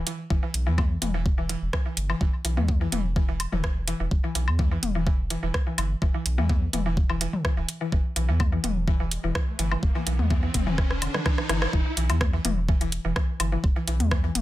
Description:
minimal techno; 126 BPM; 4/4; straight; E minor; A4 = 440 Hz
round analog bass; bass; 0.0-14.4 s; D1 to E2; -26 LUFS; equal; sidechain pumping
mallet-like synth pluck; riff; 0.1-14.3 s; D3 to E3; -32 LUFS; left 1 dB; wide subtle chorus, sidechain pumping, tape echo
garage drum kit; drums; 0.1-14.4 s; hi-hat, rim click; -29 LUFS; right 2 dB; overdrive, small room ambience
electronic kick drum; drums; 0.3-14.2 s; -24 LUFS; equal; overdrive, small room ambience
electronic toms and woodblock; percussion; 0.8-14.4 s; -31 LUFS; left 5 dB; small room ambience, digital delay
riser; sound effects; 8.8-11.7 s; -35 LUFS; equal
light reverb; dense, heavily limited modern master; -23 LUFS; side -15 dB against mid
0.0-11.7 A section; 11.7-14.4 B section
riser 8.8-11.7; drum fill 10.8-11.7; band accent 11.6; drop 11.7-14.4
0.0 E5

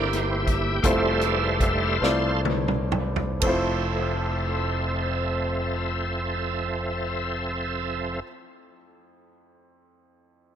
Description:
slow gospel; 38-59 BPM (dotted quarters); 6/8; straight; F major; A4 = 439 Hz
clear upright piano; accompaniment; 0.0-10.6 s; F2 to D5; -28 LUFS; equal; analog delay
bright tonewheel organ; sustained chords; 0.0-8.2 s; F3 to G5; -27 LUFS; right 1 dB; slow rotary speaker, chorus vibrato
modern bright fingered electric bass; bass; 0.0-8.2 s; F1 to C2; -29 LUFS; equal
natural country drum kit; drums; 0.1-3.7 s; hi-hat, kick drum, ride cymbal, snare drum, toms; -28 LUFS; equal; analog delay
light reverb, studio reverb; echo-heavy mix; -23 LUFS; side -9 dB against mid
0.0-3.4 A section; 3.4-9.7 B section
slowing down 0.0-3.4; tonewheel organ solo 0.0-3.4; drum fill 2.0-3.4
0.0 C7; 0.8 Fmaj7

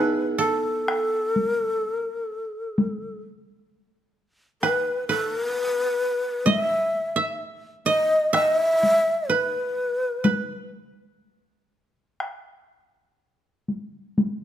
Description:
japanese traditional, Japanese chamber music; 64 BPM; 4/4; uneven beats, rubato; A4 = 438 Hz
breathy long shakuhachi; melody; 0.0-10.7 s; A4 to E5; -23 LUFS; left 1 dB
koto; second line; 0.0-12.0 s; B3 to E5; -25 LUFS; right 4 dB
solo taiko drums; percussion; 0.9-14.4 s; -25 LUFS; left 2 dB
moderate recital hall reverb, RT60 1.5 s; close, detailed microphones; -22 LUFS; side -11 dB against mid
0.0-14.4 A section

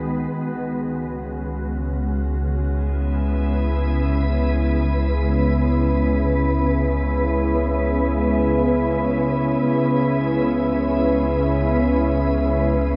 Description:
ambient; free time; C# minor; A4 = 441 Hz
glassy FM pad; sustained chords; 0.0-13.0 s; C#3 to B4; -24 LUFS; equal; ensemble chorus, built-in reverb
warm sub bass; bass; 0.0-13.0 s; C#2; -26 LUFS; equal
bowed-like drone; drone; 1.4-13.0 s; C#3 to C#4; -27 LUFS; equal; built-in reverb
wet huge ambient reverb, RT60 7.8 s; cassette tape, studio reverb; -21 LUFS; mono
0.0-13.0 A section
0.3 C#m7; 9.6 E6/C#

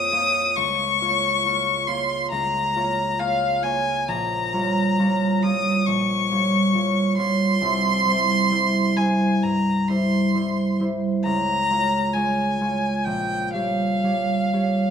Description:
classical, romantic duo for violin and harp; 67 BPM; 4/4; rubato; Bb minor; A4 = 440 Hz
rich violin; melody; 0.0-14.9 s; F5 to Eb6; -22 LUFS; left 2 dB
concert harp; accompaniment; 0.0-14.9 s; Bb1 to Db5; -22 LUFS; right 1 dB
light reverb; close, detailed microphones; -19 LUFS; side -8 dB against mid
0.0-14.9 A section
0.0 Bbm; 0.6 Bbm/Db; 4.1 Gm7b5/Bb; 7.6 C; 11.3 Db; 13.1 Gdim/Bb

